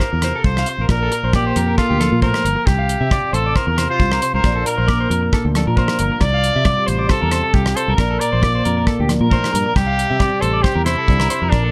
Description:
highlife guitar band; 135 BPM; 4/4; straight; C mixolydian; A4 = 441 Hz
clear trumpet; melody; 0.0-11.7 s; D4 to D5; -23 LUFS; equal
nylon-string guitar; accompaniment; 0.0-11.7 s; A2 to Bb4; -25 LUFS; equal
electric guitar through a small old amp; arpeggios; 0.0-11.7 s; F4 to F5; -26 LUFS; equal; tremolo
damped 70s drum kit; drums; 0.0-11.6 s; hi-hat, kick drum, rim click; -21 LUFS; equal
fingered electric bass; bass; 0.1-11.7 s; G1 to C3; -22 LUFS; equal
little or no reverb; -17 LUFS; mono
0.0-11.7 A section
0.0 Csus4; 0.9 Bb; 2.7 Csus4; 4.4 Bb; 6.2 Csus4; 8.0 Bb; 9.8 Csus4

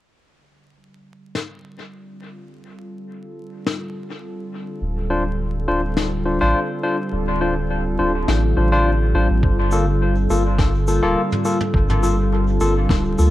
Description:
ambient dub; 104 BPM; 4/4; swing 53% on 16ths; A4 = 435 Hz
warbly tape-like pad; sustained chords; 1.6-13.3 s; D3 to A4; -25 LUFS; right 1 dB; chorus, built-in reverb
vintage brush drum kit; drums; 1.4-13.3 s; shaker, snare drum, toms; -26 LUFS; left 2 dB; dub echo
soft dub sub bass; bass; 4.8-13.3 s; D1 to D2; -20 LUFS; equal; tube saturation
barky tine electric piano; stabs; 5.1-13.3 s; Bb3 to C5; -22 LUFS; left 2 dB; dub echo
electronic kick drum; drums; 9.4-13.0 s; -20 LUFS; equal
light reverb, small room ambience; echo-heavy mix, vinyl crackle; -17 LUFS; side -15 dB against mid
0.2-9.4 A section; 9.4-13.3 B section
fade-in on ambient pad 0.2-9.4
0.2 Dm7; 9.4 Gm9

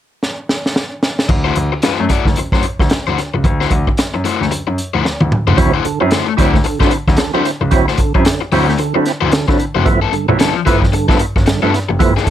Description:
funk; 112 BPM; 4/4; swing 60% on 16ths; D mixolydian; A4 = 439 Hz
crunchy breakbeat drum kit; drums; 0.2-12.3 s; crash cymbal, hi-hat, kick drum, snare drum, toms; -16 LUFS; right 1 dB
raw garage guitar; accompaniment; 1.3-12.3 s; F3 to D5; -18 LUFS; left 9 dB; overdrive
warm concert grand piano; bass; 1.3-12.1 s; F#1 to D3; -18 LUFS; equal
percussive tonewheel organ; stabs; 5.6-12.3 s; G2 to E4; -17 LUFS; right 5 dB; overdrive, chorus vibrato, slow rotary speaker
little or no reverb; -12 LUFS; side -11 dB against mid
0.0-1.3 A section; 1.3-5.6 B section; 5.6-12.3 C section
drum fill 0.2-1.3, 5.0-5.6
0.0 N.C.; 1.3 D9; 9.9 G13

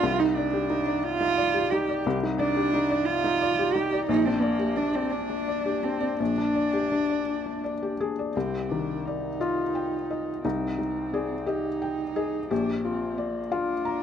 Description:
neoclassical piano and strings; 58 BPM (dotted quarters); 6/8; rubato; C minor; A4 = 440 Hz
dark cello; second line; 0.0-14.0 s; Bb3 to G4; -28 LUFS; right 4 dB
felt-muted upright piano; accompaniment; 0.0-14.0 s; Bb1 to Bb5; -26 LUFS; left 3 dB
light reverb; -24 LUFS; side -8 dB against mid
0.0-8.3 A section; 8.3-14.0 B section
0.0 Cmadd9; 4.1 Gm/Bb; 8.3 Cmadd9; 12.5 Bb6

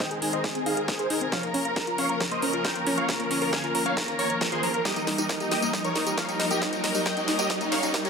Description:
uplifting trance; 136 BPM; 4/4; straight; A4 = 440 Hz
big supersaw lead; melody; 0.0-8.1 s; Eb4 to Ab5; -28 LUFS; equal; phaser, sidechain pumping, low-pass filter, ping-pong delay
muted studio string section; sustained chords; 0.0-8.1 s; Eb3 to Bb4; -32 LUFS; left 1 dB; sidechain pumping
analog pluck; arpeggios; 0.0-8.1 s; F3 to Db5; -31 LUFS; left 2 dB; chorus, sidechain pumping, ping-pong delay
electronic kick drum; drums; 0.0-8.0 s; -34 LUFS; equal; overdrive, high-pass filter on kick, high-pass filter on room
house drum kit; drums; 0.0-8.1 s; hi-hat, snare drum, tambourine; -30 LUFS; equal; overdrive, high-pass filter on snare, high-pass filter on hats, high-pass filter on perc, high-pass filter on room
riser; sound effects; 1.3-8.1 s; -37 LUFS; right 2 dB
moderate lush hall reverb, RT60 1.9 s; high-pass filter; -24 LUFS; side -5 dB against mid
0.0-8.1 A section
build-up 0.0-8.1; drum fill 0.0-8.1; filter sweep on supersaw synth 0.0-8.1; filter sweep on synth pluck 0.0-8.1; riser 1.3-8.1
0.0 Ab; 1.3 Bbm; 4.9 Eb

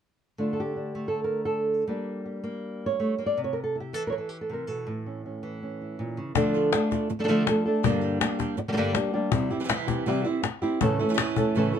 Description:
flamenco; free time; A4 = 438 Hz
flamenco guitar; melody; 0.4-11.8 s; G2 to D5; -26 LUFS; equal
flamenco guitar; stabs; 6.4-11.8 s; G2 to G4; -32 LUFS; right 8 dB
cajon; percussion; 6.4-11.6 s; -28 LUFS; left 8 dB
light reverb; dark, warm production; -25 LUFS; side -8 dB against mid
0.4-6.4 A section; 6.4-11.8 B section
0.4 D5; 1.9 Gm; 3.4 C; 4.9 A; 6.4 Dm; 7.8 Gm; 9.3 C; 10.8 A

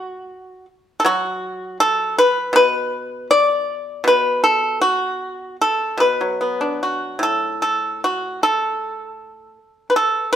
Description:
chinese traditional, Chinese solo plucked strings; 78 BPM; 4/4; uneven beats, rubato; A4 = 439 Hz
pipa; solo; 0.0-10.4 s; A2 to D5; -17 LUFS; equal
moderate stone room reverb, RT60 1.1 s; band playing live in one room; -16 LUFS; side -10 dB against mid
0.0-10.4 A section

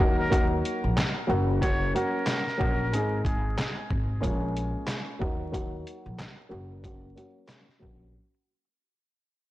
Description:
hip hop, boom-bap hip-hop; 92 BPM; 4/4; swing 60% on 16ths; A4 = 445 Hz
trumpet with metal mute; melody; 0.0-3.7 s; Ab4 to Db5; -34 LUFS; equal; high-pass filter, low-pass filter, digital delay
dark upright piano; accompaniment; 0.0-8.1 s; Gb3 to Ab4; -30 LUFS; equal; high-pass filter, low-pass filter
upright bass; bass; 0.0-8.1 s; Gb1 to Eb2; -30 LUFS; equal; tube saturation
trip hop sampler-style drum kit; drums; 0.0-8.0 s; handclaps, hi-hat, kick drum, snare drum; -29 LUFS; equal
light reverb, small room ambience; blown-out, overdriven recording, vinyl crackle, overdrive; -25 LUFS; side -16 dB against mid
0.0-9.4 A section
fade-out 0.0-9.4; filter sweep 0.0-9.4; break 8.1-9.4
0.0 Ebm; 1.3 Gb; 2.9 Ab; 4.2 Bbm7; 5.2 Ebm; 6.5 Gb; 8.1 N.C.

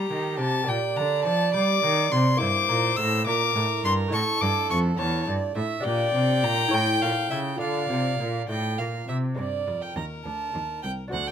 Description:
classical, baroque-style sonata movement with continuo; 69 BPM (dotted quarters); 6/8; straight; D minor; A4 = 437 Hz
rich violin; melody; 0.0-11.3 s; A4 to E6; -26 LUFS; left 6 dB
rich violin; second line; 0.0-11.3 s; G4 to Bb5; -28 LUFS; right 5 dB
lute; accompaniment; 0.0-11.3 s; D2 to E5; -30 LUFS; left 2 dB
rich cello; bass; 0.0-11.3 s; C2 to G3; -28 LUFS; right 1 dB
light reverb; close, detailed microphones; -22 LUFS; side -8 dB against mid
0.0-9.4 A section; 9.4-11.3 A section
0.0 Gm; 0.7 Gm/Bb; 2.4 Em7b5/G; 4.1 A5; 5.9 Gm/Bb; 6.7 A7; 7.6 Dm; 9.4 Gm

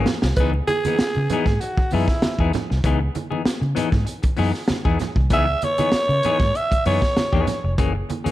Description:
funk; 97 BPM; 4/4; straight; C# dorian; A4 = 442 Hz
semi-hollow electric guitar; accompaniment; 0.0-8.3 s; E3 to G#4; -26 LUFS; left 6 dB
vintage muted fingered electric bass; bass; 0.0-8.3 s; E#1 to C#3; -22 LUFS; equal
crunchy breakbeat drum kit; drums; 0.1-8.3 s; hi-hat, kick drum, snare drum; -22 LUFS; equal
congas; percussion; 0.1-8.3 s; -30 LUFS; right 5 dB
raspy alto saxophone; melody; 0.4-7.7 s; E4 to E5; -22 LUFS; right 1 dB
light reverb, studio ambience; dark, warm production; -18 LUFS; side -15 dB against mid
0.0-8.3 A section
drum fill 0.0-0.4
0.4 C#m9; 7.8 F#9

